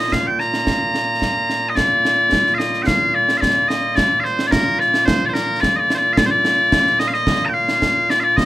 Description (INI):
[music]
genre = scottish traditional, Scottish pipe music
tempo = 109 BPM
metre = 4/4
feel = straight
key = Bb major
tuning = A4 = 435 Hz
[part]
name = loud bright bagpipes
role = melody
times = 0.0-8.5 s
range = Bb2 to Bb5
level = -16 LUFS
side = left 1 dB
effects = none
[part]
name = concert snare drum and concert bass drum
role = drums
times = 0.1-8.5 s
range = none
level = -21 LUFS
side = right 1 dB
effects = none
[sound]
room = light reverb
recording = rough home demo mix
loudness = -15 LUFS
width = side -15 dB against mid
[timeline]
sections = 0.0-1.8 A section; 1.8-8.5 A section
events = none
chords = none